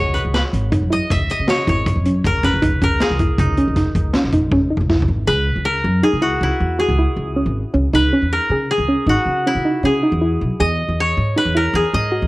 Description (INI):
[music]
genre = progressive instrumental, band music in an uneven meter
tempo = 158 BPM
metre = 7/4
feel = straight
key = C# dorian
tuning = A4 = 439 Hz
[part]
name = koto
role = melody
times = 0.0-12.3 s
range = D#4 to E5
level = -20 LUFS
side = left 1 dB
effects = cassette tape
[part]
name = soft round pluck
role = arpeggios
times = 0.0-12.3 s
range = C#4 to G#4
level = -20 LUFS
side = right 1 dB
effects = chorus, cassette tape
[part]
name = upright bass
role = bass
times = 0.0-12.3 s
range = G#1 to C#3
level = -20 LUFS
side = equal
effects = none
[part]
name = street-band drum kit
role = drums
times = 0.2-5.1 s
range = hi-hat, kick drum, snare drum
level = -20 LUFS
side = equal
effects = none
[sound]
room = light reverb, small room ambience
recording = home recording on cassette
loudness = -15 LUFS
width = side -20 dB against mid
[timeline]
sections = 0.0-5.3 A section; 5.3-12.3 B section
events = drum fill 4.5-5.3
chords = 0.0 C#m; 2.6 C#madd9; 5.3 C#m; 10.6 Emaj7